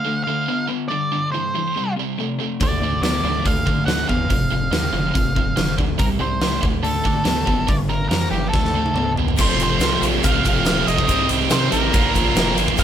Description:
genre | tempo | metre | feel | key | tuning
classic rock | 142 BPM | 4/4 | straight | unclear | A4 = 441 Hz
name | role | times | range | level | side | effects
octave-fuzz lead guitar | melody | 0.0-12.8 s | G4 to F#5 | -24 LUFS | right 1 dB | distortion
overdriven electric guitar | riff | 0.0-12.8 s | F2 to C4 | -25 LUFS | left 7 dB | none
tight distorted guitar | riff | 0.0-12.8 s | F2 to G4 | -24 LUFS | right 8 dB | distortion
gritty driven synth bass | bass | 2.6-12.8 s | Eb1 to D3 | -25 LUFS | equal | none
huge arena drum kit | drums | 2.6-12.8 s | crash cymbal, hi-hat, kick drum, ride cymbal, snare drum, toms | -21 LUFS | equal | none
overdriven electric guitar | riff | 9.4-12.8 s | F2 to Eb4 | -28 LUFS | right 1 dB | none
tube shaker | percussion | 9.4-12.8 s | none | -36 LUFS | left 7 dB | none
room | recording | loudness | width
light reverb | band playing live in one room | -17 LUFS | side -9 dB against mid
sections
0.0-9.4 A section; 9.4-12.8 B section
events
drum fill 8.5-9.4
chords
0.0 Dm; 0.9 G5; 1.8 C5; 2.6 D5; 4.3 F5; 6.0 C5; 6.6 D5; 7.7 G5; 8.5 D5; 9.4 F; 11.1 Cm; 11.9 Bb

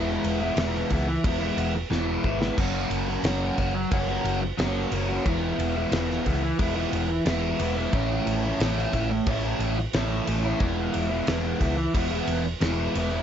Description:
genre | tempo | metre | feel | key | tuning
classic rock | 90 BPM | 4/4 | straight | E major | A4 = 441 Hz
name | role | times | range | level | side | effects
biting overdriven guitar | riff | 0.0-13.2 s | A2 to F#4 | -26 LUFS | equal | phaser
hollow-body short-scale fingered electric bass | bass | 0.0-13.2 s | E1 to C#2 | -30 LUFS | equal | none
damped 70s drum kit | drums | 0.2-13.1 s | crash cymbal, kick drum, ride cymbal, snare drum | -30 LUFS | equal | none
room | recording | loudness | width
light reverb | nothing above 7.7 kHz | -23 LUFS | side -9 dB against mid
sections
0.0-13.2 A section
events
drum fill 1.9-2.6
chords
0.0 E; 2.6 F#; 5.3 E; 7.9 A; 10.6 E

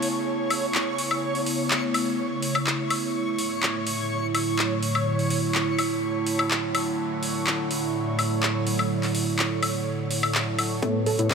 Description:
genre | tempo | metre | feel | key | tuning
progressive house | 125 BPM | 4/4 | straight | unclear | A4 = 440 Hz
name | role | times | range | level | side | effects
evolving wavetable pad | sustained chords | 0.0-11.3 s | A2 to E4 | -26 LUFS | right 2 dB | phaser, built-in reverb, sidechain pumping
deep house drum kit | drums | 0.0-11.3 s | handclaps, hi-hat, woodblock | -27 LUFS | left 2 dB | overdrive, sidechain pumping on hats, small room ambience, sidechain pumping on perc
backwards swelling texture | texture | 0.0-10.8 s | C#5 to C#6 | -32 LUFS | equal | built-in reverb, sidechain pumping
wide unison pluck | arpeggios | 10.8-11.2 s | A3 to A4 | -26 LUFS | right 2 dB | auto-pan, sidechain pumping
soft supersaw | stabs | 10.8-11.3 s | A2 to C#5 | -24 LUFS | left 1 dB | sidechain pumping, low-pass filter
electronic kick drum | drums | 10.8-11.3 s | none | -29 LUFS | equal | overdrive, high-pass filter on kick, small room ambience
riser | sound effects | 11.1-11.3 s | none | -39 LUFS | equal | none
room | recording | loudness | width
moderate huge ambient reverb, RT60 7.8 s | none | -22 LUFS | side -6 dB against mid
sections
0.0-10.8 A section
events
none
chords
0.0 Aadd9; 3.1 Dadd9/A; 10.8 Aadd9

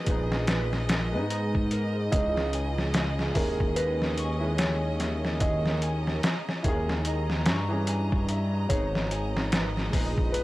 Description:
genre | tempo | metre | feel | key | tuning
trip hop | 73 BPM | 4/4 | swing 60% on 16ths | unclear | A4 = 440 Hz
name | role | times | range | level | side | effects
felt-muted upright piano | melody | 0.0-10.4 s | A#4 to D#5 | -34 LUFS | right 1 dB | tape echo
warm upright piano | accompaniment | 0.0-10.4 s | E3 to G#4 | -36 LUFS | equal | harmonic tremolo, vintage 12-bit sampler grit, tape echo
clear studio violin section | sustained chords | 0.0-10.4 s | C#4 to A#5 | -37 LUFS | right 1 dB | none
electric guitar at the edge of break-up | arpeggios | 0.1-10.4 s | G#4 to C#6 | -39 LUFS | equal | tape echo
dark detuned saw bass | bass | 0.1-10.4 s | G#1 to G#2 | -29 LUFS | equal | tube saturation
trip hop sampler-style drum kit | drums | 0.1-10.4 s | hi-hat, kick drum, snare drum | -28 LUFS | equal | none
room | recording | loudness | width
small room ambience | dry, gritty hardware recording, vinyl crackle | -25 LUFS | side -17 dB against mid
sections
0.0-10.4 A section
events
none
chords
0.0 G#madd9; 2.1 C#madd9; 8.7 G#madd9

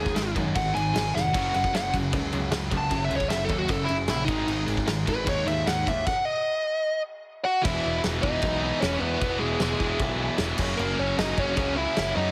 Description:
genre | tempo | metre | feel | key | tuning
punk rock | 152 BPM | 4/4 | straight | unclear | A4 = 441 Hz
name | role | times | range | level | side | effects
biting overdriven guitar | melody | 0.0-12.3 s | G#3 to A5 | -30 LUFS | equal | tape echo
fuzz guitar | riff | 0.0-12.3 s | E2 to G#3 | -36 LUFS | equal | distortion
tight distorted guitar | riff | 0.0-12.3 s | F#2 to F#4 | -35 LUFS | equal | distortion
tight distorted guitar | riff | 0.0-12.3 s | E2 to G#3 | -35 LUFS | equal | distortion
growling picked electric bass | bass | 0.0-12.3 s | E1 to F#2 | -34 LUFS | equal | overdrive
loose indie drum kit | drums | 0.1-12.1 s | crash cymbal, kick drum, snare drum | -33 LUFS | equal | none
room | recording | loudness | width
light reverb | heavily compressed radio sound, multiband compression | -26 LUFS | mono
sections
0.0-7.6 A section; 7.6-12.3 B section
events
overdriven electric guitar solo 0.0-7.6; drum fill 1.1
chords
0.0 G#5; 1.3 F#5; 4.3 G#5; 7.6 E; 10.6 F#

